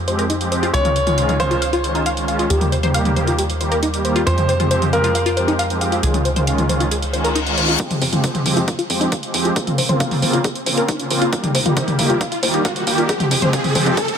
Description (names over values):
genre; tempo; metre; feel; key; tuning
uplifting trance; 136 BPM; 4/4; straight; F minor; A4 = 442 Hz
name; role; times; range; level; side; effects
tight sequencer bass; bass; 0.0-14.0 s; Bb1 to F2; -23 LUFS; equal; tube saturation, sidechain pumping, high-pass filter
filtered supersaw swell; sustained chords; 0.1-13.9 s; Db3 to G4; -21 LUFS; right 1 dB; sidechain pumping
wide unison pluck; arpeggios; 0.1-14.0 s; Eb4 to F5; -23 LUFS; left 2 dB; sidechain pumping, ping-pong delay
techno drum kit; drums; 0.1-14.2 s; hi-hat, toms; -21 LUFS; equal; sidechain pumping on hats, sidechain pumping on toms
clear grand piano; second line; 0.7-5.5 s; Bb4 to Db5; -24 LUFS; equal; ping-pong delay
reverse cymbal and riser; sound effects; 7.1-14.2 s; none; -25 LUFS; left 1 dB; none
electronic kick drum; drums; 7.8-14.1 s; none; -24 LUFS; equal; overdrive, high-pass filter on kick
room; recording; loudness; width
light reverb, digital ambience; none; -16 LUFS; side -7 dB against mid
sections
0.0-7.8 A section; 7.8-14.2 B section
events
reverse cymbal 7.1-7.8; build-up 7.8-14.2; riser 7.8-14.2; filter sweep on synth pluck 7.8-14.2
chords
0.0 Fmadd9; 0.7 Dbadd9; 2.5 Eb; 4.3 Fmadd9; 6.0 Dbadd9; 7.8 Fmadd9; 9.6 Bbmadd9; 11.3 Eb; 13.1 Fmadd9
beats
0.30 | 0.74 1.18 1.62 2.06 | 2.50 2.94 3.38 3.83 | 4.27 4.71 5.15 5.59 | 6.03 6.47 6.91 7.36 | 7.80 8.24 8.68 9.12 | 9.56 10.00 10.44 10.88 | 11.33 11.77 12.21 12.65 | 13.09 13.53 13.97